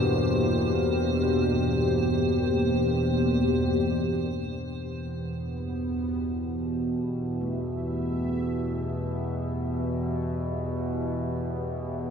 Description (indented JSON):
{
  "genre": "dark ambient drone",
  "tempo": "free time",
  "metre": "none",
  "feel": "none",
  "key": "E minor",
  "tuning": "A4 = 442 Hz",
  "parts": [
    { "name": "sweeping resonant pad", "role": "sustained chords", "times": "0.0-12.1 s", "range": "Bb3 to E5", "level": "-30 LUFS", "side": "left 1 dB", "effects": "chorus" },
    { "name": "bronze singing bowl", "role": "arpeggios", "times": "0.0-12.1 s", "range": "G2 to D4", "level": "-38 LUFS", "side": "left 2 dB", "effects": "none" },
    { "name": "analog drone", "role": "drone", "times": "0.0-12.1 s", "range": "E2 to B2", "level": "-27 LUFS", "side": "equal", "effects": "chorus" },
    { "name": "icy glass pad", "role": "texture", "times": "0.0-4.4 s", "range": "C5", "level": "-35 LUFS", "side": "right 4 dB", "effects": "chorus, built-in reverb" }
  ],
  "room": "wet cathedral reverb, RT60 5.5 s",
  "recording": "dreamy mix soaked in reverb",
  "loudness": "-25 LUFS",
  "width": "side -7 dB against mid",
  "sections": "0.0-4.3 A section; 4.3-12.1 B section",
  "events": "none",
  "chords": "0.0 Gm; 4.3 Em"
}